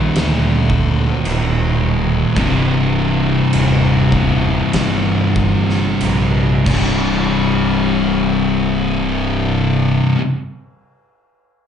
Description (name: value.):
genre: stoner and doom metal.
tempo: 44-56 BPM.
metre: 4/4.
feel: straight.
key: C minor.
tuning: A4 = 440 Hz.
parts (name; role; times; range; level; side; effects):
sludgy distorted guitar; riff; 0.0-10.2 s; C2 to Eb3; -20 LUFS; equal; overdrive, slapback echo.
thick fuzz guitar; riff; 0.0-10.2 s; C2 to Eb3; -19 LUFS; left 8 dB; distortion.
thick fuzz guitar; riff; 0.0-10.2 s; C2 to Eb3; -19 LUFS; right 6 dB; distortion, slapback echo.
fuzz fingered electric bass; bass; 0.0-10.0 s; C1 to D2; -21 LUFS; equal; overdrive.
oversized low-tuned drum kit; drums; 0.2-7.0 s; crash cymbal, kick drum, snare drum; -23 LUFS; equal; none.
room: light reverb.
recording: live gig heard through the venue's PA, club reverb, nothing above 10.4 kHz.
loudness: -13 LUFS.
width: side -8 dB against mid.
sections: 0.0-7.3 A section; 7.3-11.7 B section.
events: slowing down 0.0-7.3; drum fill 6.7-7.3.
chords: 0.0 Eb5; 2.4 Cm; 6.7 C5.